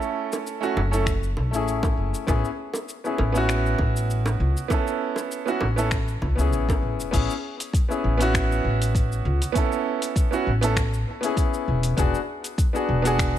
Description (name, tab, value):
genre	sunset chillout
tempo	99 BPM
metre	4/4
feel	swing 54% on 16ths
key	A major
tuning	A4 = 441 Hz
part	bright grand piano	accompaniment	0.0-13.4 s	A3 to A4	-25 LUFS	moving between left 6 dB and right 7 dB	auto-pan, digital delay
part	deep house drum kit	drums	0.0-13.4 s	cabasa, crash cymbal, finger snaps, hi-hat	-32 LUFS	left 2 dB	none
part	bongos	percussion	0.3-6.8 s	none	-32 LUFS	right 2 dB	none
part	upright bass	bass	0.8-13.4 s	E1 to C#2	-24 LUFS	equal	none
part	electronic kick drum	drums	1.1-13.3 s	none	-24 LUFS	equal	none
room	light reverb, studio ambience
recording	none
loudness	-21 LUFS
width	side -11 dB against mid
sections	0.0-7.1 A section; 7.1-13.4 B section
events	none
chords	0.0 F#m7; 2.3 Amaj7; 12.0 E7